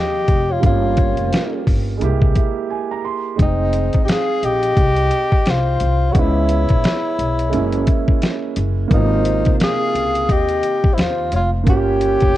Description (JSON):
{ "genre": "hip hop, jazz-hop", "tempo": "87 BPM", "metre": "4/4", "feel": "swing 60% on 16ths", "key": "F minor", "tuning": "A4 = 440 Hz", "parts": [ { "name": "breathy tenor saxophone", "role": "melody", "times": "0.0-12.4 s", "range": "Eb4 to Ab4", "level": "-20 LUFS", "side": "left 1 dB", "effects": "cassette tape" }, { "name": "breathy mellow concert flute", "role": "second line", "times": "0.0-12.4 s", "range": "C5 to F5", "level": "-26 LUFS", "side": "left 9 dB", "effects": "cassette tape, tape echo" }, { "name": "dark baby grand piano", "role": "accompaniment", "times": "0.0-12.4 s", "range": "C3 to C6", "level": "-23 LUFS", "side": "right 8 dB", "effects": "cassette tape" }, { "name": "upright bass", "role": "bass", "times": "0.0-12.3 s", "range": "F1 to Eb2", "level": "-20 LUFS", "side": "equal", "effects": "none" }, { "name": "boom bap sampler-style drum kit", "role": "drums", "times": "0.3-12.3 s", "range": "hi-hat, kick drum, snare drum", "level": "-16 LUFS", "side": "equal", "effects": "none" } ], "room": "small room ambience", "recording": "home recording on cassette", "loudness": "-15 LUFS", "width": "side -14 dB against mid", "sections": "0.0-3.4 A section; 3.4-12.4 B section", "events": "grand piano fill 2.0-3.4; break 2.7-3.4", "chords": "0.0 Ab6 (rootless); 0.6 Gm7b5; 2.0 C7b13; 3.4 Fm7; 6.2 Dbm7; 7.5 Gb9; 8.9 Ab6; 11.7 Gm7b5", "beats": "| 0.63 1.32 2.01 2.70 | 3.39 4.08 4.77 5.46 | 6.15 6.84 7.53 8.22 | 8.91 9.60 10.29 10.98 | 11.67 12.36" }